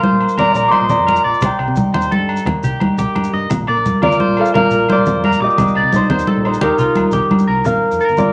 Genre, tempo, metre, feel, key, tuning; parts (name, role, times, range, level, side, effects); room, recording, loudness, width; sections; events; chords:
highlife guitar band; 115 BPM (dotted quarters); 12/8; straight; Bb major; A4 = 436 Hz
Celtic harp; melody; 0.0-8.3 s; Eb4 to D6; -18 LUFS; equal
picked old ladder-braced acoustic guitar; accompaniment; 0.0-8.3 s; G2 to Bb4; -31 LUFS; equal
electric guitar at the edge of break-up; arpeggios; 0.0-8.3 s; F4 to D6; -22 LUFS; equal
congas; percussion; 0.0-8.3 s; -20 LUFS; equal
fingered electric bass; bass; 0.1-8.3 s; G1 to C3; -26 LUFS; equal
agogo bells; percussion; 0.2-7.5 s; -30 LUFS; equal
shekere; percussion; 0.3-8.3 s; -30 LUFS; equal
wet club reverb, RT60 0.7 s; -15 LUFS; mono
0.0-7.7 A section
0.0 Bb; 1.4 Cm; 2.5 Eb; 3.5 Bb; 5.6 Cm; 6.6 Eb; 7.7 Bb